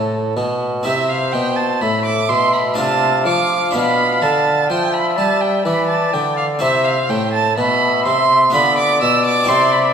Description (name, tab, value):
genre	classical, baroque-style sonata movement with continuo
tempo	62 BPM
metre	3/4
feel	straight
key	C major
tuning	A4 = 440 Hz
part	mellow trumpet	melody	0.0-9.9 s	A4 to F5	-21 LUFS	left 6 dB	none
part	warm violin	second line	0.0-9.9 s	A4 to E6	-17 LUFS	right 4 dB	none
part	harpsichord	accompaniment	0.0-9.9 s	A2 to G4	-22 LUFS	left 2 dB	none
part	warm bassoon	bass	0.0-9.9 s	A2 to G3	-20 LUFS	right 1 dB	none
room	wet concert hall reverb, RT60 2.0 s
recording	minimal, uncompressed stereo recording, vinyl crackle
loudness	-14 LUFS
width	side -7 dB against mid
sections	0.9-9.9 A section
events	none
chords	0.0 Am; 2.8 Dm7/C; 3.7 G7/B; 6.6 C; 8.5 Bdim/D